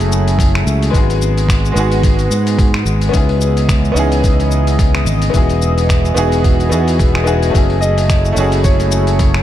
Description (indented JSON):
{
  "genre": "sunset chillout",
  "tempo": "109 BPM",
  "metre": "4/4",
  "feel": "swing 56% on 16ths",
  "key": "unclear",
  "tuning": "A4 = 440 Hz",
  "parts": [
    { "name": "bright grand piano", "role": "accompaniment", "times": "0.0-9.4 s", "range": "G#3 to G#4", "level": "-19 LUFS", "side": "moving between left 6 dB and right 2 dB", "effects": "auto-pan, tape echo" },
    { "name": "lush unison pad", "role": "sustained chords", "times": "0.0-9.4 s", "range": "C#3 to D#5", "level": "-20 LUFS", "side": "left 1 dB", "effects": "chorus" },
    { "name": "fingered electric bass", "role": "bass", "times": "0.0-9.4 s", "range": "E1 to G#2", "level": "-15 LUFS", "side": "equal", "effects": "none" },
    { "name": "dusty soul sampler-style drum kit", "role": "drums", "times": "0.0-9.4 s", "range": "finger snaps, hi-hat, shaker", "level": "-24 LUFS", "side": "left 2 dB", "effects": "none" },
    { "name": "electronic kick drum", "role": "drums", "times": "0.4-9.3 s", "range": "none", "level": "-13 LUFS", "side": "equal", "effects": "none" },
    { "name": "dark concert grand piano", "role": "melody", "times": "7.8-9.4 s", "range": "C#5 to D#5", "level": "-20 LUFS", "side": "equal", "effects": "tape echo" }
  ],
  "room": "light reverb, digital ambience",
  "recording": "dark, warm production",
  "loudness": "-11 LUFS",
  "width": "side -12 dB against mid",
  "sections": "0.0-9.4 A section",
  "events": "none",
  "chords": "0.0 F#m9; 0.9 G#m7; 3.1 C#m9; 5.3 Emaj9; 7.5 F#m9"
}